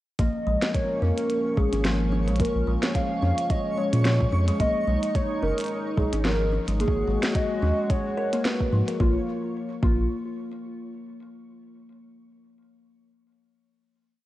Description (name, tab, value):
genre	IDM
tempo	109 BPM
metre	4/4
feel	swing 56% on 16ths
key	Bb phrygian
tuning	A4 = 440 Hz
part	warbly nostalgic lead	melody	0.2-10.1 s	F4 to F5	-29 LUFS	equal	wide subtle chorus, digital delay
part	warm analog pad	sustained chords	0.2-9.3 s	F3 to Db5	-31 LUFS	equal	chorus
part	kalimba	arpeggios	0.2-10.1 s	F3 to Bb4	-31 LUFS	left 2 dB	tape echo
part	warm sub bass	bass	0.2-10.1 s	F#1 to Bb2	-24 LUFS	equal	tube saturation
part	electronic kick drum	drums	0.2-10.0 s	none	-26 LUFS	equal	studio reverb
part	glitchy drum kit	drums	0.2-9.0 s	hi-hat, snare drum	-30 LUFS	equal	studio reverb
part	twinkling granular texture	texture	1.0-9.0 s	Db5	-38 LUFS	equal	built-in reverb
room	light reverb, digital ambience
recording	worn, warbling old tape, cassette tape, warbly pitch drift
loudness	-22 LUFS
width	side -15 dB against mid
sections	0.2-9.0 groove; 9.0-11.2 final chord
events	none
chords	0.2 Bbm; 4.6 B6; 6.8 Ab5; 9.0 Bbm